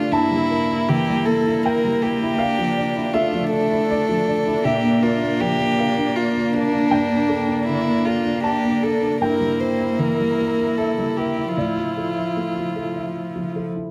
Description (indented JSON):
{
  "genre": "neoclassical piano and strings",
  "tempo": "79 BPM",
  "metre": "3/4",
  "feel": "rubato",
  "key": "D minor",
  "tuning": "A4 = 441 Hz",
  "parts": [
    { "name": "warm violin", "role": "melody", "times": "0.0-13.5 s", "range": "D4 to C5", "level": "-26 LUFS", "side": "equal", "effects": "none" },
    { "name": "warm cello", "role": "second line", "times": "0.0-13.7 s", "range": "F3 to Bb3", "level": "-26 LUFS", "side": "equal", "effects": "none" },
    { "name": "dark upright piano", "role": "accompaniment", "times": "0.0-13.9 s", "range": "G2 to A5", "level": "-26 LUFS", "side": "equal", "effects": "none" },
    { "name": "dark viola", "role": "accompaniment", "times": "0.0-13.7 s", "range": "D4 to E4", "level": "-30 LUFS", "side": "equal", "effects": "none" }
  ],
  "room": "light reverb",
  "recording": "close, detailed microphones",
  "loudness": "-21 LUFS",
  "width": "mono",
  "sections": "0.0-13.9 A section",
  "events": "none",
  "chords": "0.1 Edim/G; 2.4 Dmadd9; 4.6 Bb; 6.9 Gmadd9; 9.2 Edim/G; 11.6 Dmadd9/A",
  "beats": "| 0.12 0.89 1.64 | 2.39 3.14 3.90 | 4.64 5.40 6.16 | 6.92 7.67 8.44 | 9.20 9.98 10.76 | 11.55 12.35 13.14"
}